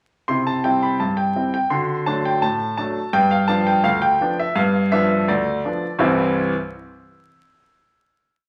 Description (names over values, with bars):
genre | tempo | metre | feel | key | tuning
ragtime piano | 84 BPM | 2/4 | straight | C major | A4 = 440 Hz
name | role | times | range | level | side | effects
clear concert grand piano | solo | 0.3-6.5 s | C2 to C6 | -20 LUFS | equal | none
room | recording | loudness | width
wet large studio reverb, RT60 1.1 s | vinyl crackle | -20 LUFS | mono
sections
0.3-6.0 A section; 6.0-7.4 final chord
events
none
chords
0.3 C; 1.7 D; 3.1 G7; 6.0 C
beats
| 0.28 1.00 | 1.71 2.43 | 3.14 3.85 | 4.57 5.28 | 6.00